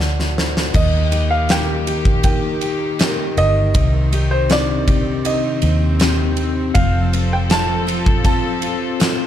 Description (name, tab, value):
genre	pop ballad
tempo	80 BPM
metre	4/4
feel	straight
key	unclear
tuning	A4 = 440 Hz
part	tine electric piano	accompaniment	0.0-9.3 s	C3 to A5	-23 LUFS	equal	medium stereo tremolo
part	vintage muted fingered electric bass	bass	0.0-9.3 s	F1 to Eb2	-19 LUFS	equal	none
part	huge arena drum kit	drums	0.0-9.2 s	crash cymbal, kick drum, ride cymbal, snare drum	-19 LUFS	equal	none
part	warm studio string section	sustained chords	0.7-9.3 s	Eb3 to A4	-26 LUFS	left 2 dB	none
part	picked steel-string acoustic guitar	arpeggios	0.7-9.3 s	C3 to Eb5	-28 LUFS	left 5 dB	none
part	clear baby grand piano	melody	0.8-9.0 s	C5 to A5	-22 LUFS	right 2 dB	ping-pong delay
room	small room ambience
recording	dark, warm production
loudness	-15 LUFS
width	side -10 dB against mid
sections	0.7-9.3 A section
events	tine electric piano fill 0.0-0.7; drum fill 0.0-0.7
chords	0.0 D; 0.7 Eb; 3.7 Cmadd9; 6.7 F